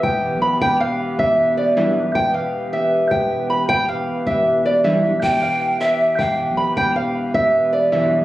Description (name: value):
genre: hip hop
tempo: 156 BPM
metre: 4/4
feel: half-time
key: E phrygian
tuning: A4 = 438 Hz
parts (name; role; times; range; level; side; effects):
- fingerpicked acoustic archtop guitar; melody; 0.0-8.2 s; D5 to B5; -17 LUFS; equal; low-pass filter
- warbly tape-like pad; sustained chords; 0.0-8.2 s; E3 to B4; -25 LUFS; equal; chorus, built-in reverb
- warm 808-style bass; bass; 0.0-8.2 s; E1 to B1; -29 LUFS; equal; none
- chorused polysynth; stabs; 1.8-2.0, 4.8-5.1, 7.9-8.2 s; B1 to E3; -21 LUFS; equal; none
- breathy bright large pan pipes; second line; 5.2-6.4 s; E5 to G5; -22 LUFS; right 1 dB; tape echo
room: light reverb, studio reverb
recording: recorded on a phone in the room, club reverb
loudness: -16 LUFS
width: side -15 dB against mid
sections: 0.0-8.2 A section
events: none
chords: 0.0 Em